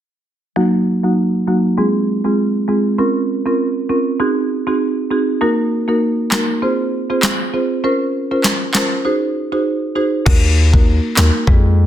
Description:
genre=dancehall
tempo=99 BPM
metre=4/4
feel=swing 56% on 16ths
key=unclear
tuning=A4 = 439 Hz
part: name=marimba with medium mallets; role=accompaniment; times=0.6-11.7 s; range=Gb3 to C5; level=-16 LUFS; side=right 1 dB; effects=low-pass filter
part: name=afro-pop drum kit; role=drums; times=6.3-11.6 s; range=crash cymbal, handclaps, kick drum, snare drum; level=-15 LUFS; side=equal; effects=none
part: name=hard-hitting 808-style bass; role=bass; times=10.3-11.9 s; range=Eb2 to F2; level=-13 LUFS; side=left 1 dB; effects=none
room=light reverb, digital ambience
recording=dense, heavily limited modern master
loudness=-14 LUFS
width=side -11 dB against mid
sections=0.6-10.3 A section; 10.3-11.9 B section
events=filter sweep on marimba 0.6-10.3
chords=0.6 Ebm; 1.8 Fm; 3.0 Bbmadd9; 4.2 Ab7; 5.4 Ebm; 6.6 Fm; 7.8 Bbmadd9; 9.1 Ab7; 10.3 Ebm

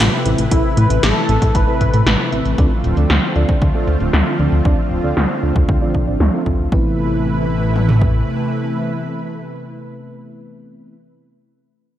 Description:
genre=synthwave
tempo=116 BPM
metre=4/4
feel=straight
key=A minor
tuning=A4 = 439 Hz
part: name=wide unison lead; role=melody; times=0.0-2.3 s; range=E4 to B4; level=-22 LUFS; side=left 1 dB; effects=analog chorus, digital delay
part: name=analog string pad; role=sustained chords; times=0.0-10.9 s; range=C3 to B4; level=-21 LUFS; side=left 1 dB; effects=ensemble chorus, sidechain pumping
part: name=chorused synth bass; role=bass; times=0.0-8.2 s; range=D1 to A2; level=-17 LUFS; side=equal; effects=sidechain pumping
part: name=80s electronic pad drums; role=drums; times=0.0-6.7 s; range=hi-hat, snare drum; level=-20 LUFS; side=equal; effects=low-pass filter on hats, low-pass filter on snare, low-pass filter on toms, low-pass filter on cymbals, gated reverb
part: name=mellow FM electric piano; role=stabs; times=0.3-10.9 s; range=A3 to E5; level=-25 LUFS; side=right 4 dB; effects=chorus, phaser, low-pass filter, digital delay
part: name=80s electronic pad drums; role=drums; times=0.5-8.1 s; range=kick drum, toms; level=-17 LUFS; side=equal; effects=none
room=moderate lush hall reverb, RT60 2.5 s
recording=bright 1980s-style digital production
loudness=-14 LUFS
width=side -12 dB against mid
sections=0.0-6.7 A section; 6.7-10.9 B section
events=filter sweep on drum 0.0-6.7; filter sweep on analog synth bass 0.0-6.7; filter sweep on FM electric piano 0.0-6.7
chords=0.0 Amadd9; 2.6 Dm7; 6.7 Amadd9

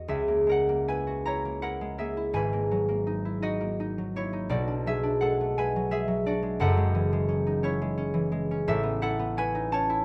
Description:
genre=classical, solo harp piece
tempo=50-60 BPM (dotted quarters)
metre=6/8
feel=rubato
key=C# minor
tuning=A4 = 440 Hz
part: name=concert harp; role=solo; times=0.0-10.0 s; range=F#1 to A#5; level=-28 LUFS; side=equal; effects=none
room=light reverb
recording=close, detailed microphones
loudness=-28 LUFS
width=mono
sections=0.1-10.0 A section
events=none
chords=0.1 C#m6; 2.3 G#m9; 4.5 Bm6; 6.6 F#m9; 8.7 Aadd9

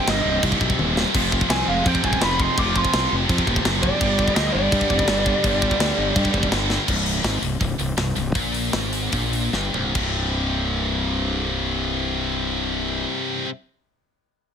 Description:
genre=heavy metal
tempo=141-168 BPM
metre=4/4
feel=straight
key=unclear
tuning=A4 = 440 Hz
part: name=lead guitar through a small cranked amp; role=melody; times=0.0-6.5 s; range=D5 to D6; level=-25 LUFS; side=equal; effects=overdrive, digital delay
part: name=high-gain lead guitar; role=second line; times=0.0-6.5 s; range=G3 to F4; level=-29 LUFS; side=right 4 dB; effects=distortion
part: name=lush unison pad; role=sustained chords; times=0.0-6.9 s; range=C3 to B4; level=-37 LUFS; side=right 2 dB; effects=none
part: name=heavy high-gain guitar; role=riff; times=0.0-13.5 s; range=C2 to G3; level=-26 LUFS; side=left 16 dB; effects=distortion
part: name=heavy high-gain guitar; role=riff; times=0.0-13.5 s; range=C2 to G3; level=-27 LUFS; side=right 18 dB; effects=distortion
part: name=high-gain distorted guitar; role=riff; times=0.0-6.9 s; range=C2 to G3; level=-30 LUFS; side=right 1 dB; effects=distortion
part: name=fuzz fingered electric bass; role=bass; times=0.1-13.0 s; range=C1 to G2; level=-25 LUFS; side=equal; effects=overdrive
part: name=tight metal drum kit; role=drums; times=0.1-10.1 s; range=crash cymbal, hi-hat, kick drum, snare drum, splash cymbal, toms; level=-24 LUFS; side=equal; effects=none
room=little or no reverb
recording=none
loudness=-19 LUFS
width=side -7 dB against mid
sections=0.0-6.9 A section; 6.9-10.0 B section; 10.0-13.4 C section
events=drum fill 0.8-1.1, 6.7, 9.5-10.0; slowing down 6.9-10.0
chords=0.0 Cm; 1.1 Fm; 4.0 G; 6.9 C5

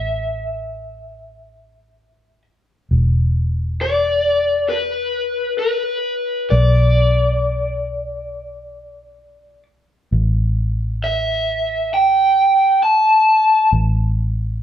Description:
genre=post-rock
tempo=66 BPM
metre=4/4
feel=straight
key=unclear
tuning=A4 = 435 Hz
part: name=raw garage guitar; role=melody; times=0.0-13.7 s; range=B4 to A5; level=-16 LUFS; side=equal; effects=overdrive
part: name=vintage muted fingered electric bass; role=bass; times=0.0-14.6 s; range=E1 to B1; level=-18 LUFS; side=equal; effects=none
room=wet studio reverb, RT60 0.8 s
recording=band playing live in one room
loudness=-15 LUFS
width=side -10 dB against mid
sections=0.0-14.6 A section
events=none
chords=0.0 A5; 2.9 E5; 6.5 Bm; 10.1 A5

